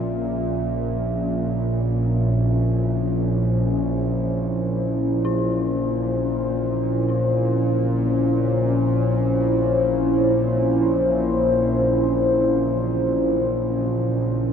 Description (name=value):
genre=ambient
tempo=free time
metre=none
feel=none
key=unclear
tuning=A4 = 442 Hz
part: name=dark analog pad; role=sustained chords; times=0.0-14.5 s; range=Db4 to C5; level=-22 LUFS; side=equal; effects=chorus, phaser
part: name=dark detuned synth bell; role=arpeggios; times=0.0-14.5 s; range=Db4 to E4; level=-37 LUFS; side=left 7 dB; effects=chorus, phaser, ping-pong delay
part: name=bowed-like drone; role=drone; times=0.0-14.5 s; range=Bb1 to Bb2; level=-22 LUFS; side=equal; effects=built-in reverb
part: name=bronze singing bowl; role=texture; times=0.0-14.5 s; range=E5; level=-37 LUFS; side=right 5 dB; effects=none
room=wet huge ambient reverb, RT60 8.3 s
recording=none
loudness=-19 LUFS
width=side -7 dB against mid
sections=0.0-14.5 A section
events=fade-out on singing bowl 0.0-14.5; filter sweep on synth drone 0.0-14.5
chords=0.0 Bbm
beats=free time